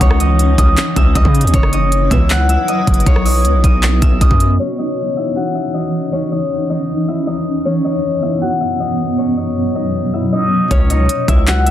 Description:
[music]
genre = hip hop, trap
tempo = 157 BPM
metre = 4/4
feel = half-time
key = C# minor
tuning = A4 = 440 Hz
[part]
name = Celtic harp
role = melody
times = 0.0-11.7 s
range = C#4 to F#6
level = -18 LUFS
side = left 2 dB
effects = none
[part]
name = granular cloud pad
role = sustained chords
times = 0.0-10.7 s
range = E3 to D#4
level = -19 LUFS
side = equal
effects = built-in reverb
[part]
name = distorted 808-style bass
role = bass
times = 0.0-4.6, 10.7-11.7 s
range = F#1 to C#3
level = -14 LUFS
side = equal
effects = distortion
[part]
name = trap drum kit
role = drums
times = 0.0-4.5, 10.7-11.7 s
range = handclaps, hi-hat, kick drum, rim click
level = -13 LUFS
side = equal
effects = none
[part]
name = warm symphonic string section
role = stabs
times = 1.5-2.3 s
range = C#2 to E3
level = -21 LUFS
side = right 4 dB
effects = none
[sound]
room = digital ambience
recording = dense, heavily limited modern master, vinyl crackle, low-pass filter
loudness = -12 LUFS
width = side -12 dB against mid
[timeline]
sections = 0.0-4.6 A section; 4.6-10.7 B section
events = filter sweep 4.6-10.7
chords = 0.0 C#madd9; 1.5 F#7sus4; 3.1 Bsus2; 4.6 C#madd9; 7.7 F#7sus4; 9.2 Bsus2; 10.7 C#madd9

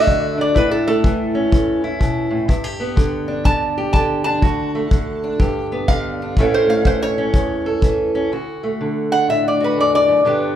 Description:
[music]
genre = acoustic country blues, solo or duo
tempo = 124 BPM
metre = 4/4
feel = swing 64% on 8ths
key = D major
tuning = A4 = 441 Hz
[part]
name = lap resonator guitar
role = melody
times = 0.0-10.2 s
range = A4 to A5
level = -18 LUFS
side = equal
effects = none
[part]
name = fingerpicked steel-string acoustic guitar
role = accompaniment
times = 0.0-10.6 s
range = D2 to A4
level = -19 LUFS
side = equal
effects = none
[part]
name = kick drum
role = drums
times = 0.1-8.0 s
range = none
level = -18 LUFS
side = left 1 dB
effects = none
[sound]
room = light reverb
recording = none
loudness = -15 LUFS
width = side -10 dB against mid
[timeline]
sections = 0.0-8.3 A section; 8.3-10.6 A section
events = resonator guitar played with a steel bar solo 0.0-8.3, 8.3-10.6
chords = 0.0 D; 0.6 A; 2.5 G; 4.4 D; 5.4 G; 6.4 A; 8.3 D

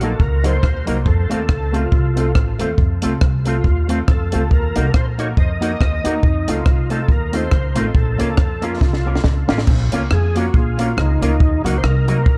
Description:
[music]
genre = ska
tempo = 139 BPM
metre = 4/4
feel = swing 58% on 8ths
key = Bb harmonic minor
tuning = A4 = 440 Hz
[part]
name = overdriven tonewheel organ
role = melody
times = 0.0-12.4 s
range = Eb4 to Eb5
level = -28 LUFS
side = equal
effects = chorus vibrato, slow rotary speaker, dub echo
[part]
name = electric guitar with an envelope filter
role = accompaniment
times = 0.0-12.2 s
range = Gb3 to Gb4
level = -28 LUFS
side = equal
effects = none
[part]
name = bright upright piano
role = stabs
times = 0.0-12.2 s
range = A3 to Bb4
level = -30 LUFS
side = equal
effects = dub echo
[part]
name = upright bass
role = bass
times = 0.0-12.4 s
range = A1 to F2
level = -22 LUFS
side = equal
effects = none
[part]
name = compact cocktail drum kit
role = drums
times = 0.0-12.4 s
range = crash cymbal, hi-hat, kick drum, rim click, snare drum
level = -20 LUFS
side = equal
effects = none
[sound]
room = little or no reverb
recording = dark, warm production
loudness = -17 LUFS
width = mono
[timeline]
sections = 0.0-9.7 A section; 9.7-12.4 B section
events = drum fill 8.8-9.7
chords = 0.0 Ebm; 1.1 F; 4.5 Ebm; 6.2 F7; 8.0 Bbm; 11.4 Ebm

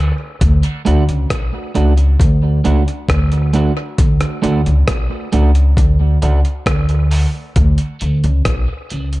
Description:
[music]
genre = dub reggae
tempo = 67 BPM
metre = 4/4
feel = straight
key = D major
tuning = A4 = 440 Hz
[part]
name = electric guitar at the edge of break-up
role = accompaniment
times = 0.0-9.2 s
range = A3 to F#4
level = -21 LUFS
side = right 4 dB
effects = high-pass filter, tape echo
[part]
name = mellow tonewheel organ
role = accompaniment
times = 0.0-0.3, 7.8-7.9 s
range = none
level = barely audible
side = none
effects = none
[part]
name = upright bass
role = bass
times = 0.0-9.2 s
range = B1 to D2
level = -13 LUFS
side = equal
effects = none
[part]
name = breakbeat sampler-style drum kit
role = drums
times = 0.4-9.2 s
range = hi-hat, kick drum, rim click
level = -18 LUFS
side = equal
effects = none
[sound]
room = digital ambience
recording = echo-heavy mix, nothing above 10.4 kHz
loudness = -12 LUFS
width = side -18 dB against mid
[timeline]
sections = 0.0-9.2 A section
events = filter sweep 4.0-9.2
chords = 0.0 D

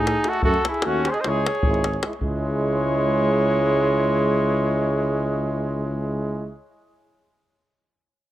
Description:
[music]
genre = balkan folk, Balkan brass band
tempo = 301 BPM (eighths)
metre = 9/8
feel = straight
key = C# minor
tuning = A4 = 441 Hz
[part]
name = mellow flugelhorn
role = melody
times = 0.0-6.6 s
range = F#4 to D#5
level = -25 LUFS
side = equal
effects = analog delay
[part]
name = mellow trumpet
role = second line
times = 0.0-6.6 s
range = G#3 to B#4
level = -26 LUFS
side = right 2 dB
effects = none
[part]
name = mellow tuba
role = bass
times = 0.0-6.6 s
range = G#1 to A2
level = -25 LUFS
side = equal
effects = none
[part]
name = davul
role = percussion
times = 0.1-2.4 s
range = none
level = -25 LUFS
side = left 1 dB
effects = none
[part]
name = clear euphonium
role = accompaniment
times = 0.2-6.6 s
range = G#3 to A3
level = -29 LUFS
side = right 4 dB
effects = none
[part]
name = warm French horn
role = accompaniment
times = 0.2-6.6 s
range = E4 to F#4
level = -30 LUFS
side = left 4 dB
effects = none
[sound]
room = moderate spring reverb, RT60 2.0 s, small room ambience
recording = none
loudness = -19 LUFS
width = side -14 dB against mid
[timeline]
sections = 0.0-2.2 A section; 2.2-5.8 B section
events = none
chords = 0.0 D#dim; 1.2 C#m

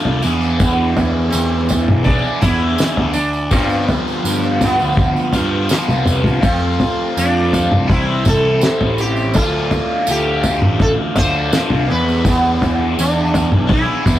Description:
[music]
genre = psychedelic rock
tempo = 82 BPM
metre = 4/4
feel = straight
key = unclear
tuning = A4 = 441 Hz
[part]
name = combo organ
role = sustained chords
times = 0.0-14.2 s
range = F4 to A5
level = -31 LUFS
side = right 5 dB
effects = spring reverb
[part]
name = biting overdriven guitar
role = riff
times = 0.0-14.2 s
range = G2 to G#4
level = -19 LUFS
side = left 1 dB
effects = phaser
[part]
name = fuzz picked electric bass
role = bass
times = 0.1-14.2 s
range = A1 to G2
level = -19 LUFS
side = right 1 dB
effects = overdrive
[part]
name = cloth-damped thuddy drum kit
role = drums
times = 0.1-14.2 s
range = kick drum, snare drum, toms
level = -17 LUFS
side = equal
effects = none
[part]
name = tambourine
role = percussion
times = 0.2-14.2 s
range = none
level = -30 LUFS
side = right 4 dB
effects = none
[part]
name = sitar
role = melody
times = 0.6-14.2 s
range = B3 to C5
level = -21 LUFS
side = right 1 dB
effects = none
[sound]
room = light reverb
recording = rough rehearsal-room recording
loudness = -13 LUFS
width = side -13 dB against mid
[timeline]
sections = 0.0-14.2 A section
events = drum fill 5.7-6.4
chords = 0.2 E7; 3.5 G7; 6.4 Fadd9; 7.9 C; 9.3 Dmadd9; 11.9 E7

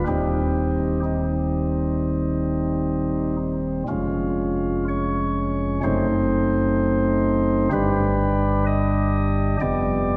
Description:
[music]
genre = classical, chorale-style piece for pipe organ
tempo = 63 BPM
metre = 4/4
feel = rubato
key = C minor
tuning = A4 = 444 Hz
[part]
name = chamber organ, flutes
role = solo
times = 0.0-10.2 s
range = Eb1 to Eb5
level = -22 LUFS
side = equal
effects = none
[sound]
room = wet church reverb, RT60 2.7 s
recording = dark, warm production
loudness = -22 LUFS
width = mono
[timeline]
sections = 0.0-10.2 A section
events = none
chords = 0.1 Cm/Eb; 3.9 Db/F; 5.8 F#dim7; 7.7 G; 9.6 G7/F

